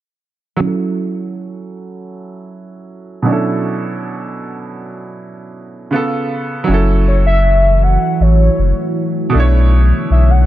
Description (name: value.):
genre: R&B.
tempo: 79 BPM.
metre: 4/4.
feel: straight.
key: F# minor.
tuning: A4 = 440 Hz.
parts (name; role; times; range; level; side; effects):
clear grand piano; accompaniment; 0.6-10.5 s; B2 to C#5; -19 LUFS; right 3 dB; low-pass filter.
deep dark ambient pad; sustained chords; 7.7-10.5 s; D3 to C#5; -19 LUFS; right 2 dB; chorus, built-in reverb.
saturated sub bass; bass; 6.7-10.5 s; F#1 to B1; -11 LUFS; equal; none.
warm velvety synth lead; melody; 7.1-10.5 s; C#5 to F#5; -17 LUFS; left 2 dB; chorus, ping-pong delay.
room: little or no reverb.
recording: dark, warm production, nothing above 10.9 kHz.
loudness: -12 LUFS.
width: side -14 dB against mid.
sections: 0.6-6.7 A section; 6.7-10.5 B section.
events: filter sweep on grand piano 0.6-6.7.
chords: 0.6 F#m7; 3.3 Bm11; 5.9 C#7b13; 6.7 F#m7; 9.3 Bm11.